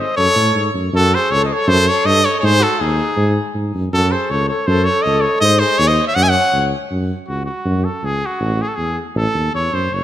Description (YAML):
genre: balkan folk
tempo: 160 BPM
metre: 2/4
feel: swing 54% on 16ths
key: F# dorian sharp4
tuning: A4 = 440 Hz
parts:
  - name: clear trumpet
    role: melody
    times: 0.0-10.0 s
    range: F#4 to G#5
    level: -17 LUFS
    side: equal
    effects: none
  - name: warm flugelhorn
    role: second line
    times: 0.0-6.7 s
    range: D#4 to E5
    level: -22 LUFS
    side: left 2 dB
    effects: none
  - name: dark tuba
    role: bass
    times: 0.2-10.0 s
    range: F#1 to A2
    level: -18 LUFS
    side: equal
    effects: none
room: moderate scoring stage reverb, RT60 1.9 s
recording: none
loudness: -14 LUFS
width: side -12 dB against mid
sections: 0.9-6.9 A section; 6.9-10.0 B section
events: trumpet solo 6.9-10.0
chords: 0.2 F#m; 0.9 F#5; 2.4 G#5; 3.9 F#5; 5.4 G#5; 6.2 F#5; 8.4 A5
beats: | 0.17 0.55 | 0.92 1.30 | 1.67 2.05 | 2.42 2.79 | 3.17 3.54 | 3.92 4.29 | 4.66 5.04 | 5.41 5.79 | 6.16 6.53 | 6.91 7.28 | 7.66 8.03 | 8.41 8.78 | 9.16 9.53 | 9.91